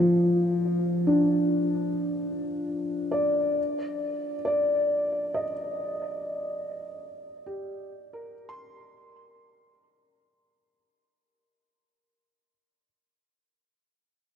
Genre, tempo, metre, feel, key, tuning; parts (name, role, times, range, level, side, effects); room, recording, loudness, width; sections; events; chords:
ambient; 67 BPM; 4/4; straight; A4 = 439 Hz
felt-muted upright piano; solo; 0.0-12.9 s; F3 to C6; -25 LUFS; left 1 dB; tape echo
wet huge ambient reverb, RT60 7.0 s; in a vast, echoing space; -24 LUFS; side -8 dB against mid
0.0-10.7 A section
fade-out 1.2-10.7
0.0 Dm/F; 3.6 Ebmaj7/F